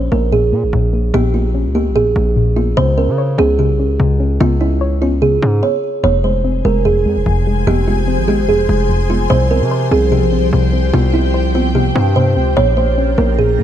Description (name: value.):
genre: hip hop.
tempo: 147 BPM.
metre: 4/4.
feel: half-time.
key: F minor.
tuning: A4 = 438 Hz.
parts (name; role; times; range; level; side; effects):
kalimba; melody; 0.0-13.6 s; E4 to Db5; -17 LUFS; right 4 dB; low-pass filter.
soft round pluck; accompaniment; 0.0-13.6 s; F2 to Db5; -18 LUFS; left 3 dB; chorus, low-pass filter.
distorted 808-style bass; bass; 0.0-13.6 s; F1 to Db3; -16 LUFS; equal; distortion.
ethereal airy pad; sustained chords; 6.8-13.6 s; F3 to Bb5; -20 LUFS; left 1 dB; ensemble chorus, built-in reverb, phaser.
room: light reverb.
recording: none.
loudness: -12 LUFS.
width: side -10 dB against mid.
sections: 0.0-6.0 A section; 6.0-13.6 B section.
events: stop 5.6-6.0.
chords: 0.0 Bbm; 2.8 Db5; 6.0 Fm; 9.3 Csus4; 12.6 Bbm.